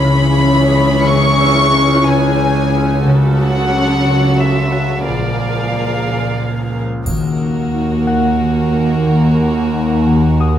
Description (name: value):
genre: cinematic, suspense film score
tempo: 90 BPM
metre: 3/4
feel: straight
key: Eb minor from 7.1 s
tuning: A4 = 440 Hz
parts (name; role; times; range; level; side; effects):
- warm chamber violin section; melody; 0.0-10.6 s; Bb4 to C#6; -19 LUFS; left 1 dB; none
- warm chamber violin section; second line; 0.0-10.6 s; F#4 to C#5; -23 LUFS; left 2 dB; none
- warm chamber viola section; accompaniment; 0.0-10.6 s; E3 to E#5; -19 LUFS; right 1 dB; none
- marimba with soft mallets; riff; 0.0-10.6 s; A#2 to Eb4; -18 LUFS; left 4 dB; none
- warm chamber cello section; bass; 0.0-10.6 s; Eb2 to C#3; -20 LUFS; right 2 dB; none
- overtone-sweeping drone; drone; 0.0-10.6 s; C#2 to Eb2; -21 LUFS; right 2 dB; chorus, built-in reverb
- Celtic harp; texture; 0.0-10.6 s; E4 to Eb6; -27 LUFS; left 4 dB; none
- warm chamber double bass section; bass; 3.1-10.6 s; A#1 to Eb2; -22 LUFS; right 4 dB; none
- taiko ensemble; drums; 7.1-8.4 s; none; -24 LUFS; right 1 dB; none
- triangle; percussion; 7.1-8.4 s; none; -33 LUFS; left 1 dB; none
room: wet scoring stage reverb, RT60 1.6 s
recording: none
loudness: -12 LUFS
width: side -10 dB against mid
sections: 0.0-7.1 A section; 7.1-10.6 B section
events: none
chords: 0.0 C#m7; 3.1 F#m/C#; 5.1 A#7; 7.1 Ebm